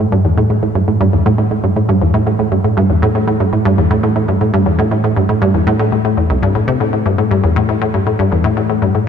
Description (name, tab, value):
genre	ambient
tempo	119 BPM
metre	4/4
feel	straight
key	A minor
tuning	A4 = 439 Hz
part	resonant blip pluck	solo	0.0-9.0 s	C2 to C3	-12 LUFS	equal	chorus, tape echo
room	wet lush hall reverb, RT60 2.7 s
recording	none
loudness	-12 LUFS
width	side -7 dB against mid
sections	0.0-9.1 A section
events	none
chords	none